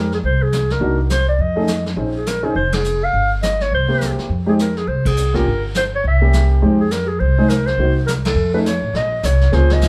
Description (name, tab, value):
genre	jazz, small-group swing and bop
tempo	206 BPM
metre	4/4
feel	swing 60% on 8ths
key	F minor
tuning	A4 = 444 Hz
part	breathy clarinet	melody	0.0-9.9 s	G4 to F5	-23 LUFS	equal	none
part	warm baby grand piano	accompaniment	0.0-9.9 s	Ab3 to G#4	-22 LUFS	equal	none
part	upright bass	bass	0.0-9.9 s	F1 to F2	-20 LUFS	equal	none
part	vintage brush drum kit	drums	0.1-9.9 s	brushed snare drum, hi-hat, kick drum, ride cymbal, snare drum	-28 LUFS	equal	none
room	wet studio reverb, RT60 0.6 s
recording	band playing live in one room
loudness	-17 LUFS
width	mono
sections	0.0-8.9 A section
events	band accent 2.7, 5.0, 8.2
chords	0.0 Fm; 0.8 Cm7b5; 1.4 F7alt; 2.0 Bbm11; 3.1 Ebadd9/G; 3.7 C7; 4.3 Fm; 5.5 Gm; 6.0 C7b9; 6.6 Fm7; 7.8 Cm7b5; 8.4 F7alt; 8.9 Bbm9